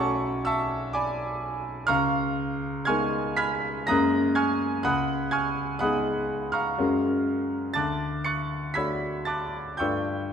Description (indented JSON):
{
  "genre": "classical, impressionist solo piano",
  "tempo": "56-64 BPM",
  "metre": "3/4",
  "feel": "rubato",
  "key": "unclear",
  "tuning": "A4 = 440 Hz",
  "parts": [
    { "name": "clear concert grand piano", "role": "solo", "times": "0.0-10.3 s", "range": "B1 to C#7", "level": "-24 LUFS", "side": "equal", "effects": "none" }
  ],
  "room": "moderate scoring stage reverb, RT60 1.6 s",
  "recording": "dark, warm production",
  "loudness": "-24 LUFS",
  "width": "side -7 dB against mid",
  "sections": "0.0-10.3 A section",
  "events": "none",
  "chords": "0.0 Bm9; 1.9 C#13; 3.9 F#add9; 4.8 C#11; 6.8 F#maj9; 7.8 Dmaj7; 9.8 G9"
}